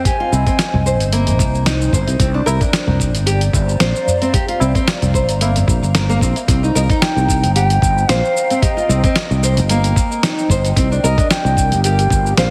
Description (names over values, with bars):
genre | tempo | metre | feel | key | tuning
organic downtempo | 112 BPM | 4/4 | swing 54% on 16ths | C minor | A4 = 440 Hz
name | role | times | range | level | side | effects
bansuri | melody | 0.0-1.1, 6.8-12.5 s | Eb5 to Ab5 | -24 LUFS | equal | tape echo, shimmer reverb
warbly tape-like pad | sustained chords | 0.0-12.5 s | C4 to Bb5 | -29 LUFS | equal | chorus, built-in reverb, sidechain pumping, shimmer reverb
nylon-string guitar | arpeggios | 0.0-12.5 s | Bb3 to C5 | -23 LUFS | equal | tape echo, shimmer reverb
dusty soul sampler-style drum kit | drums | 0.1-12.5 s | hi-hat, shaker, snare drum | -23 LUFS | equal | none
electronic kick drum | drums | 0.1-12.2 s | none | -20 LUFS | equal | none
sustaining fretless electric bass | bass | 0.3-12.5 s | G1 to C2 | -18 LUFS | equal | sidechain pumping
tabla | percussion | 0.3-6.5 s | none | -28 LUFS | equal | none
room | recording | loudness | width
moderate lush hall reverb, RT60 1.7 s, digital ambience | heavily compressed radio sound, multiband compression | -15 LUFS | mono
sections
0.0-6.5 A section; 6.5-12.5 B section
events
none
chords
0.0 Fm7 (rootless); 2.2 Bb; 6.5 Cm7; 10.8 Gm7